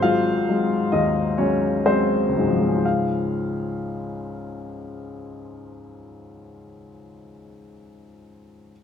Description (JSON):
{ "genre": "classical, romantic character piece for solo piano", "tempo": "58-67 BPM", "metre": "4/4", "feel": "rubato", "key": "Db major", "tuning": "A4 = 440 Hz", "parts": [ { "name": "warm upright piano", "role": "solo", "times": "0.0-8.7 s", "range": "Ab1 to F5", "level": "-21 LUFS", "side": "left 2 dB", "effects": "none" } ], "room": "moderate recital hall reverb, RT60 1.5 s", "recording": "close, detailed microphones", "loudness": "-19 LUFS", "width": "side -8 dB against mid", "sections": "0.0-2.9 A section; 2.9-6.6 B section", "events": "slowing down 0.0-2.9", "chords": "0.0 Ab7; 2.9 Db", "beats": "0.02 0.92 1.86 | 2.85 3.78 4.71 5.65" }